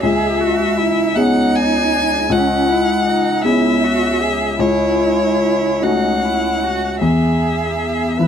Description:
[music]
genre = neoclassical piano and strings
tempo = 47-54 BPM (dotted quarters)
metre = 6/8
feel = rubato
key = unclear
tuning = A4 = 440 Hz
[part]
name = clear violin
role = melody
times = 0.0-8.3 s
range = C#5 to G#5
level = -19 LUFS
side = left 2 dB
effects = none
[part]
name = rich cello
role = second line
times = 0.0-8.3 s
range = C#4 to B4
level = -21 LUFS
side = right 9 dB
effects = none
[part]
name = felt-muted upright piano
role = accompaniment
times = 0.0-8.3 s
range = C#2 to G#4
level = -17 LUFS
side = left 2 dB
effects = none
[sound]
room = moderate studio reverb, RT60 0.8 s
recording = dark, warm production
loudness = -14 LUFS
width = side -8 dB against mid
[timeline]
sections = 0.0-8.3 A section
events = none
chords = 0.0 C#m7; 4.6 A6/C#; 7.0 E

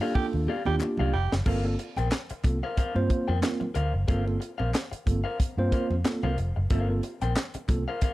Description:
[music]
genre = funk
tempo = 92 BPM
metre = 4/4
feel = swing 56% on 16ths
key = G minor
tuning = A4 = 440 Hz
[part]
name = electric guitar through a small old amp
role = accompaniment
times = 0.0-8.1 s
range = G4 to G5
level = -34 LUFS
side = left 4 dB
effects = spring reverb, plate reverb
[part]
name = mellow tine electric piano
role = stabs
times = 0.0-8.0 s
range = Bb3 to C5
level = -30 LUFS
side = right 2 dB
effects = medium stereo tremolo, plate reverb
[part]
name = growling tenor saxophone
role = second line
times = 0.1-1.3 s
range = G4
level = -32 LUFS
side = right 8 dB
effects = plate reverb
[part]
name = congas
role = percussion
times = 0.1-8.1 s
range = none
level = -39 LUFS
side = right 3 dB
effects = none
[part]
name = vintage muted fingered electric bass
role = bass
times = 0.2-8.1 s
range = F1 to G2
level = -27 LUFS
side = equal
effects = none
[part]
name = tight funk drum kit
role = drums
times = 0.2-8.1 s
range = crash cymbal, handclaps, hi-hat, kick drum, snare drum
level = -27 LUFS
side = equal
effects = none
[part]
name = group handclap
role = percussion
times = 0.8-7.9 s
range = none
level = -40 LUFS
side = left 5 dB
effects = none
[sound]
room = little or no reverb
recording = dark, warm production, lossy compression artefacts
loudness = -25 LUFS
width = side -17 dB against mid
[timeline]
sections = 0.0-1.5 A section; 1.5-8.1 B section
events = drum fill 0.2-1.5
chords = 0.0 Ebmaj9; 1.5 Gm11

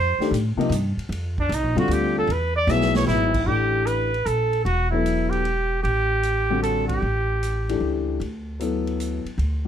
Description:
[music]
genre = modal jazz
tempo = 152 BPM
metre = 3/4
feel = swing 67% on 8ths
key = A dorian from 3.5 s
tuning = A4 = 439 Hz
[part]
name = mellow trumpet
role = melody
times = 0.0-8.0 s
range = D4 to E5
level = -23 LUFS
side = right 2 dB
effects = none
[part]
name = upright bass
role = bass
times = 0.0-9.7 s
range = E1 to A2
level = -25 LUFS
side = equal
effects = none
[part]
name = warm concert grand piano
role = accompaniment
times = 0.2-9.7 s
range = C3 to A4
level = -24 LUFS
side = left 5 dB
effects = none
[part]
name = vintage drum kit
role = drums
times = 0.2-9.5 s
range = crash cymbal, hi-hat, kick drum, ride cymbal, snare drum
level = -33 LUFS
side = right 2 dB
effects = none
[sound]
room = light reverb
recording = close, detailed microphones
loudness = -20 LUFS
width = side -9 dB against mid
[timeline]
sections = 0.0-3.5 A section; 3.5-9.7 B section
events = trumpet solo 0.0-3.5; drum fill 2.7-3.1; band accent 6.8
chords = 0.0 Csus4; 2.3 Eadd9; 3.5 A7sus4; 8.2 Dsus2

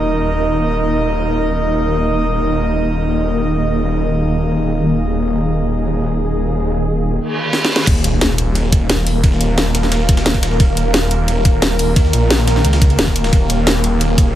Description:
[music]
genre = dark technical drum and bass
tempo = 176 BPM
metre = 4/4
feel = straight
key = unclear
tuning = A4 = 439 Hz
[part]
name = swarming drone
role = sustained chords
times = 0.0-14.4 s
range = Eb3 to Bb4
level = -20 LUFS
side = equal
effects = built-in reverb, sidechain pumping
[part]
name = snarling distorted saw bass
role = bass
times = 0.0-14.4 s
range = Eb1 to Eb2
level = -18 LUFS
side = equal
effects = overdrive, sidechain pumping
[part]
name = airy breathy pad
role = texture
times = 0.0-7.2 s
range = Eb4 to Eb5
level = -20 LUFS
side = right 2 dB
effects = chorus, sidechain pumping
[part]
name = reverse cymbal and impact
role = sound effects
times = 7.3-9.2 s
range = none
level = -22 LUFS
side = right 1 dB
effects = none
[part]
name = drum and bass drum kit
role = drums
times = 7.5-14.2 s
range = crash cymbal, hi-hat, snare drum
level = -17 LUFS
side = equal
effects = none
[part]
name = breakbeat sampler-style drum kit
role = drums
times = 7.9-14.3 s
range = hi-hat, ride cymbal, snare drum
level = -27 LUFS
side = right 1 dB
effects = overdrive, high-pass filter on snare, high-pass filter on cymbals, high-pass filter on hats, high-pass filter on room
[part]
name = electronic kick drum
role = drums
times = 7.9-14.2 s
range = none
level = -13 LUFS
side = equal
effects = none
[sound]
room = light reverb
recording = none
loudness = -13 LUFS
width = side -12 dB against mid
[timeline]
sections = 0.0-7.9 A section; 7.9-14.4 B section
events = filter sweep on synth drone 0.0-7.9; reverse cymbal 7.3-7.9; drum fill 7.5-7.9; drop 7.9-14.4; impact 7.9-9.2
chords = 0.0 Eb5

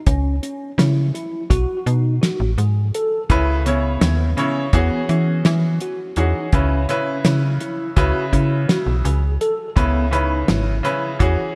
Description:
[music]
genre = progressive instrumental, band music in an uneven meter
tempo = 167 BPM (eighths)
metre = 9/8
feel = straight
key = C# minor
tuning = A4 = 440 Hz
[part]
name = tine electric piano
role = arpeggios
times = 0.1-11.5 s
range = B3 to A4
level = -28 LUFS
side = equal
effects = analog chorus, digital delay
[part]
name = slap-like FM bass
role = bass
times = 0.1-11.4 s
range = G#1 to E3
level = -21 LUFS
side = equal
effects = none
[part]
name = cloth-damped thuddy drum kit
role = drums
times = 0.1-11.4 s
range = hi-hat, kick drum, snare drum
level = -23 LUFS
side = equal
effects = gated reverb
[part]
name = bright baby grand piano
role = accompaniment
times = 3.3-11.6 s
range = C#3 to C#5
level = -25 LUFS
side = equal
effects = none
[sound]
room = light reverb, small room ambience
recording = bright 1980s-style digital production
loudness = -19 LUFS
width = mono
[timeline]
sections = 0.0-9.8 A section; 9.8-11.6 A section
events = none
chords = 0.1 C#m; 1.5 B7; 3.3 C#m7; 4.7 E69; 6.5 C#m7

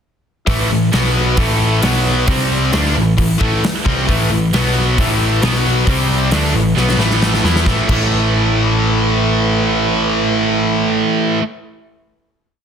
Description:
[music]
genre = hard rock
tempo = 134 BPM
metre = 4/4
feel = straight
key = A minor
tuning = A4 = 440 Hz
[part]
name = tonewheel organ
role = sustained chords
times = 0.5-10.8 s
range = A3 to D5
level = -29 LUFS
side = right 1 dB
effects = none
[part]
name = high-gain distorted guitar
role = riff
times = 0.5-11.4 s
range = A2 to E4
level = -19 LUFS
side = right 12 dB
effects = distortion
[part]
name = overdriven electric guitar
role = riff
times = 0.5-11.4 s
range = A2 to E4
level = -21 LUFS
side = right 3 dB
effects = none
[part]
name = tight distorted guitar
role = riff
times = 0.5-11.4 s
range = A2 to E4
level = -19 LUFS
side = left 11 dB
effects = distortion
[part]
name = hollow-body short-scale picked electric bass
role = bass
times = 0.5-11.0 s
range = A1 to E2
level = -18 LUFS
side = equal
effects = none
[part]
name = gated 80s drum kit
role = drums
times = 0.5-8.0 s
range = crash cymbal, hi-hat, kick drum, snare drum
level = -19 LUFS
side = equal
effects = none
[sound]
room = light reverb, small room reverb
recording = dense, heavily limited modern master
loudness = -13 LUFS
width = side -7 dB against mid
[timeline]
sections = 0.5-7.7 riff; 7.7-11.3 final chord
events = drum fill 6.8-7.7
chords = 0.5 A5; 0.9 B5; 1.4 A5; 1.8 B5; 2.3 C5; 2.7 Am; 4.5 B5; 5.0 A5; 5.4 B5; 5.9 C5; 6.3 A5

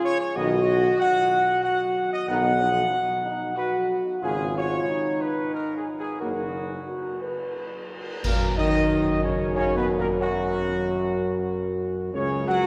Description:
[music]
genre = classical, ceremonial fanfare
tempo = 92 BPM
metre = 3/4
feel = straight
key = F# major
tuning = A4 = 439 Hz
[part]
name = dark trumpet section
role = melody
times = 0.0-12.7 s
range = F#4 to F#5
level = -29 LUFS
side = equal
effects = none
[part]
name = mellow French horn section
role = sustained chords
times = 0.0-12.7 s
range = E#3 to B4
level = -30 LUFS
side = equal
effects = none
[part]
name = clear trombone section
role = sustained chords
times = 0.4-12.7 s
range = F#2 to C#4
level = -35 LUFS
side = equal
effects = none
[part]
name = warm tuba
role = bass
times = 0.4-12.7 s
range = F#1 to F#2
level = -31 LUFS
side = equal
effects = none
[part]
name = cymbal swell, clash cymbals and concert bass drum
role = percussion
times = 4.2-9.5 s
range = none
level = -34 LUFS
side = equal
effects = none
[sound]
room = wet cathedral reverb, RT60 5.5 s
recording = none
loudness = -24 LUFS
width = mono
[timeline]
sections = 0.0-8.2 A section; 8.2-12.7 A section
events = band accent 8.2-8.9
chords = 0.4 B; 4.2 G#sus4; 6.2 F#; 8.2 F#6; 12.1 C#5

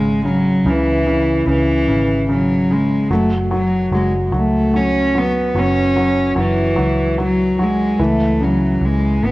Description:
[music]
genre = six-eight pop ballad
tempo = 49 BPM (dotted quarters)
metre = 6/8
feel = straight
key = F# minor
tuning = A4 = 440 Hz
[part]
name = warm cello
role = melody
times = 0.0-9.3 s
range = E3 to C#4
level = -16 LUFS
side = equal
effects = cassette tape, tape echo
[part]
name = felt-muted upright piano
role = accompaniment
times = 0.0-9.3 s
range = C#3 to F#3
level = -19 LUFS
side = equal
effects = cassette tape
[part]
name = vintage muted fingered electric bass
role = bass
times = 0.0-9.3 s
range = F#1 to C#2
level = -21 LUFS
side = equal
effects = none
[sound]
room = light reverb, studio reverb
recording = home recording on cassette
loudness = -14 LUFS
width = side -19 dB against mid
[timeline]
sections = 0.0-9.3 A section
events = none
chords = 0.0 C#m; 3.1 F#5; 8.0 C#m

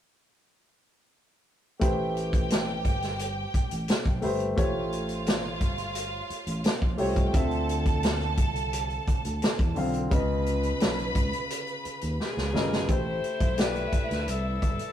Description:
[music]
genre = lush 1970s-style soul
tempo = 87 BPM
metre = 4/4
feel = straight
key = A minor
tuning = A4 = 440 Hz
[part]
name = bright studio string section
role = second line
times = 1.8-14.9 s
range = C#4 to B5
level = -34 LUFS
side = right 2 dB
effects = none
[part]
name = warm grand piano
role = accompaniment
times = 1.8-14.9 s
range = C#3 to F5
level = -31 LUFS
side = left 1 dB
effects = none
[part]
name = fingered electric bass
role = bass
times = 1.8-14.8 s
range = G1 to E2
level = -32 LUFS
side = equal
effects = none
[part]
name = vintage drum kit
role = drums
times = 1.8-14.9 s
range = hi-hat, kick drum, snare drum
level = -27 LUFS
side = equal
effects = none
[part]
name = edgy alto saxophone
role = melody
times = 12.2-14.9 s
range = G#4 to C5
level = -34 LUFS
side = left 3 dB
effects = none
[sound]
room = moderate studio reverb, RT60 0.6 s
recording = rough rehearsal-room recording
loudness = -25 LUFS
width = side -10 dB against mid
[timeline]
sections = 1.8-12.9 A section; 12.9-14.9 B section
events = drum fill 12.2-12.9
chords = 1.8 Am9; 4.6 A7alt; 7.3 Dm9; 10.1 C#13; 12.9 Am9

